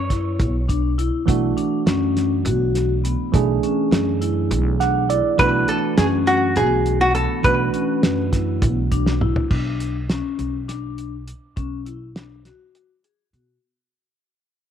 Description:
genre	progressive instrumental, band music in an uneven meter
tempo	204 BPM (eighths)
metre	7/8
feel	straight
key	B dorian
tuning	A4 = 440 Hz
part	archtop guitar, miked and amplified	melody	0.0-0.6, 5.4-9.2 s	F#4 to C#5	-20 LUFS	right 1 dB	slapback echo
part	upright bass	bass	0.0-13.6 s	B1 to B2	-24 LUFS	equal	none
part	vibraphone with medium mallets	arpeggios	0.1-13.6 s	B3 to G#4	-25 LUFS	left 9 dB	auto-pan
part	cloth-damped thuddy drum kit	drums	0.1-13.5 s	crash cymbal, hi-hat, kick drum, snare drum, toms	-21 LUFS	equal	none
part	tine electric piano	accompaniment	1.3-9.5 s	E3 to F#5	-23 LUFS	right 13 dB	none
room	light reverb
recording	1960s-style stereo with parts hard left and right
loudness	-17 LUFS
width	side -9 dB against mid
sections	0.0-9.5 A section; 9.5-13.6 B section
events	tine electric piano fill 4.5-5.4; drum fill 9.1-9.5; fade-out 9.5-13.6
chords	0.0 Bmadd9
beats	0.10 0.40 0.69 0.99 | 1.28 1.57 1.87 2.16 2.46 2.75 3.04 | 3.34 3.63 3.92 4.22 4.51 4.81 5.10 | 5.39 5.69 5.98 6.28 6.57 6.86 7.16 | 7.45 7.74 8.04 8.33 8.62 8.92 9.21 | 9.51 9.80 10.10 10.39 10.68 10.98 11.27 | 11.57 11.86 12.15 12.45 12.74 13.04 13.33

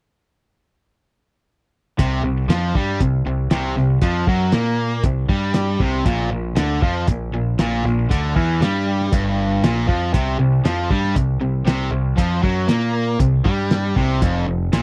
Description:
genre	classic rock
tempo	118 BPM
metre	4/4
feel	straight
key	C mixolydian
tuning	A4 = 439 Hz
part	overdriven electric guitar	riff	2.0-14.8 s	F2 to Bb3	-25 LUFS	equal	none
part	overdriven semi-hollow guitar	riff	2.0-14.8 s	F2 to Bb3	-26 LUFS	equal	none
part	growling picked electric bass	bass	2.0-14.8 s	F1 to Bb2	-25 LUFS	equal	overdrive
part	cloth-damped thuddy drum kit	drums	2.0-14.8 s	hi-hat, kick drum, snare drum	-22 LUFS	equal	none
room	little or no reverb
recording	dry, close 1970s-style studio recording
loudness	-19 LUFS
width	mono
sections	2.0-14.8 A section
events	none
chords	2.0 C5; 6.1 Bb5; 10.1 C5; 14.2 F5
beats	| 1.99 2.49 3.00 3.51 | 4.02 4.53 5.04 5.55 | 6.06 6.57 7.08 7.59 | 8.10 8.61 9.12 9.63 | 10.14 10.65 11.16 11.67 | 12.18 12.69 13.20 13.71 | 14.22 14.73

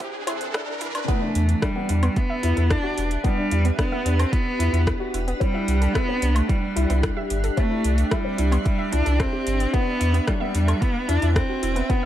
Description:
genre	piano and strings electronica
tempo	111 BPM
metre	4/4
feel	straight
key	E minor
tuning	A4 = 443 Hz
part	granular cloud pad	sustained chords	0.0-12.1 s	C2 to G5	-31 LUFS	right 1 dB	built-in reverb, sidechain pumping
part	warbly dusty pluck	arpeggios	0.0-12.1 s	B3 to E5	-35 LUFS	right 2 dB	chorus, sidechain pumping, ping-pong delay
part	deep house drum kit	drums	0.0-12.0 s	hi-hat, rim click, woodblock	-30 LUFS	left 1 dB	overdrive
part	electronic kick drum	drums	0.0-12.0 s	none	-24 LUFS	equal	overdrive
part	riser	sound effects	0.0-1.1 s	none	-33 LUFS	right 2 dB	none
part	felt-muted upright piano	riff	0.3-12.1 s	B3 to G4	-30 LUFS	left 4 dB	none
part	rich cello	melody	1.1-12.1 s	F#3 to D4	-26 LUFS	right 1 dB	none
part	warm sub bass	bass	1.4-11.8 s	E1 to E2	-21 LUFS	equal	sidechain pumping
room	little or no reverb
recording	high-pass filter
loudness	-20 LUFS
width	side -12 dB against mid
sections	0.0-1.1 A section; 1.1-12.1 B section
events	build-up 0.0-1.1; riser 0.0-1.1; drop 1.1-12.1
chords	0.0 Cadd9; 1.1 Em7; 5.4 Cadd9; 9.7 Em7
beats	0.01 0.55 | 1.09 1.63 2.17 2.71 | 3.25 3.79 4.33 4.87 | 5.41 5.95 6.49 7.03 | 7.57 8.11 8.65 9.19 | 9.73 10.28 10.82 11.36 | 11.90

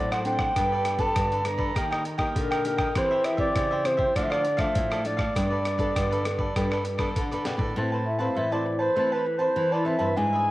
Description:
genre	samba and choro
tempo	100 BPM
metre	4/4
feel	straight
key	unclear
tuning	A4 = 440 Hz
part	baroque flute	melody	0.0-10.5 s	Bb4 to Bb5	-26 LUFS	equal	none
part	cavaquinho	accompaniment	0.0-10.5 s	D4 to A5	-32 LUFS	right 1 dB	cassette tape
part	nylon-string guitar	accompaniment	0.0-10.5 s	A2 to B4	-31 LUFS	left 2 dB	cassette tape
part	nylon-string guitar	bass	0.0-10.5 s	G2 to E3	-30 LUFS	equal	none
part	breakbeat sampler-style drum kit	drums	0.1-7.7 s	hi-hat, kick drum, rim click, snare drum	-30 LUFS	equal	none
room	light reverb, small room ambience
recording	home recording on cassette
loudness	-23 LUFS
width	side -17 dB against mid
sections	0.0-7.8 A section; 7.8-10.5 B section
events	drum fill 7.2-7.8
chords	0.0 D7; 0.6 Gadd9; 1.8 Eb; 3.0 C/E; 4.2 Dm; 5.4 Gadd9; 7.8 Amadd9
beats	| 0.56 1.16 1.76 2.36 | 2.96 3.56 4.16 4.76 | 5.36 5.96 6.56 7.16 | 7.76 8.36 8.96 9.57 | 10.17

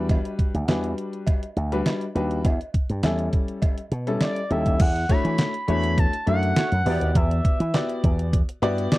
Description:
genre	early-eighties boogie funk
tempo	102 BPM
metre	4/4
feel	straight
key	unclear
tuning	A4 = 440 Hz
part	warm grand piano	accompaniment	0.0-9.0 s	G3 to E5	-27 LUFS	left 2 dB	none
part	slap bass with an envelope filter	bass	0.0-8.9 s	D2 to E3	-24 LUFS	equal	none
part	detuned 8-bit digital drum machine	drums	0.1-9.0 s	crash cymbal, handclaps, hi-hat, kick drum, snare drum	-22 LUFS	equal	none
part	cowbell	percussion	0.1-4.4 s	none	-36 LUFS	right 2 dB	none
part	expressive synth lead	melody	4.2-9.0 s	D5 to B5	-27 LUFS	right 1 dB	chorus
part	analog synth brass	second line	6.6-9.0 s	A3 to D5	-32 LUFS	right 3 dB	chorus
room	little or no reverb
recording	dry, close 1970s-style studio recording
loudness	-21 LUFS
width	side -18 dB against mid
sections	0.0-4.8 A section; 4.8-9.0 B section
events	none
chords	0.0 Gmaj7; 2.4 A7/E; 4.8 Dmaj9/E; 6.9 Em9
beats	| 0.09 0.68 1.27 1.86 | 2.45 3.03 3.62 4.21 | 4.80 5.39 5.97 6.56 | 7.15 7.74 8.33 8.92

